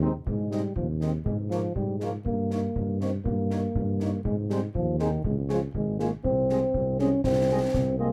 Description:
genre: military-style march for wind band.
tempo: 120 BPM.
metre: 2/4.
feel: straight.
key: Ab major.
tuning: A4 = 440 Hz.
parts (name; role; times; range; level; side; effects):
dark French horn section; accompaniment; 0.0-8.1 s; F3 to Ab4; -34 LUFS; equal; none.
mellow tuba; bass; 0.0-8.1 s; Ab1 to Ab2; -32 LUFS; equal; none.
mellow euphonium; second line; 0.3-8.1 s; Eb3 to Db4; -30 LUFS; equal; none.
concert bass drum and concert snare drum; drums; 0.3-7.9 s; none; -37 LUFS; equal; none.
mellow trumpet section; melody; 0.5-8.1 s; C5 to Eb5; -49 LUFS; equal; none.
room: light reverb.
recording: close, detailed microphones.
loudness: -27 LUFS.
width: mono.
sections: 0.3-8.1 A section.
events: none.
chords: 0.3 Ab; 1.3 Bb7(no3)/Ab; 2.3 Eb/G; 4.3 Ab; 5.3 Db; 6.2 Ab/C.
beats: | 0.27 0.77 | 1.27 1.76 | 2.26 2.76 | 3.26 3.76 | 4.25 4.75 | 5.25 5.75 | 6.25 6.75 | 7.25 7.74.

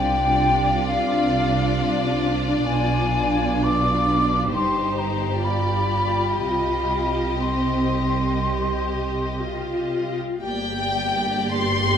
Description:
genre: classical, slow romantic movement for symphony orchestra.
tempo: 52-69 BPM.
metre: 4/4.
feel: rubato.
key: C minor.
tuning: A4 = 440 Hz.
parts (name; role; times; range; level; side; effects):
rich symphonic violin section; melody; 0.0-12.0 s; C5 to C6; -28 LUFS; left 3 dB; none.
concert flute; second line; 0.0-9.4 s; F5 to D6; -24 LUFS; left 2 dB; none.
rich symphonic violin section; second line; 0.0-12.0 s; F4 to D5; -30 LUFS; left 4 dB; none.
warm studio viola section; accompaniment; 0.0-12.0 s; Bb3 to G4; -26 LUFS; equal; none.
rich symphonic cello section; bass; 0.0-12.0 s; G2 to C3; -28 LUFS; right 3 dB; none.
warm studio double bass section; bass; 0.0-12.0 s; G1 to C2; -28 LUFS; right 3 dB; none.
room: moderate scoring stage reverb, RT60 1.5 s.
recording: none.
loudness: -20 LUFS.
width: side -8 dB against mid.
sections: 0.0-10.4 A section; 10.4-12.0 B section.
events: none.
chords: 0.0 Dm7/C; 2.7 Bdim7; 4.5 Cm/G; 5.4 G7; 6.4 Cm; 10.4 Gm.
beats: 0.87 1.77 | 2.65 3.63 4.53 5.43 | 6.40 7.42 8.44 9.43 | 10.44 11.53.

